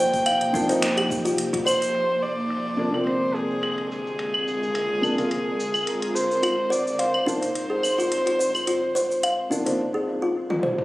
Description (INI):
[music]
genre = organic downtempo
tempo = 107 BPM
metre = 4/4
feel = swing 54% on 16ths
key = F dorian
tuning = A4 = 441 Hz
[part]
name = dark kamancheh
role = melody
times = 0.0-9.8 s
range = Ab4 to G5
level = -26 LUFS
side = equal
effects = tape echo
[part]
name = felt-muted upright piano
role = accompaniment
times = 0.0-9.8 s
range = C3 to F4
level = -29 LUFS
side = left 1 dB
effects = sidechain pumping, tape echo
[part]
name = ethereal airy pad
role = sustained chords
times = 0.0-9.8 s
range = Ab2 to Bb4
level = -32 LUFS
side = equal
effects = ensemble chorus, built-in reverb, phaser, sidechain pumping
[part]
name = kalimba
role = arpeggios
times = 0.0-1.8, 6.4-10.8 s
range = Eb4 to F5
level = -24 LUFS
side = equal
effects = tape echo
[part]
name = warm sub bass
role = bass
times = 0.0-1.3 s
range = Eb1 to Bb1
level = -46 LUFS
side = right 1 dB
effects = none
[part]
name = electronic kick drum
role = drums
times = 0.1-1.6 s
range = none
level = -33 LUFS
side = equal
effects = none
[part]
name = organic electronic drum kit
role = drums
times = 0.1-10.8 s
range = claves, finger snaps, hi-hat, shaker, toms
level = -28 LUFS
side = equal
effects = low-pass filter on hats, low-pass filter on perc, low-pass filter on snare, low-pass filter on toms, low-pass filter on room
[sound]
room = moderate huge ambient reverb, RT60 5.6 s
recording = recorded on a phone in the room, club reverb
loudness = -21 LUFS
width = side -18 dB against mid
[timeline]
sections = 0.0-1.9 A section; 1.9-10.8 B section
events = drum fill 10.5-10.8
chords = 0.0 Eb; 1.9 Fm69; 6.4 Ab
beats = 0.26 0.82 1.38 | 1.94 2.50 3.07 3.63 | 4.19 4.75 5.31 5.87 | 6.43 6.99 7.55 8.11 | 8.67 9.23 9.79 10.36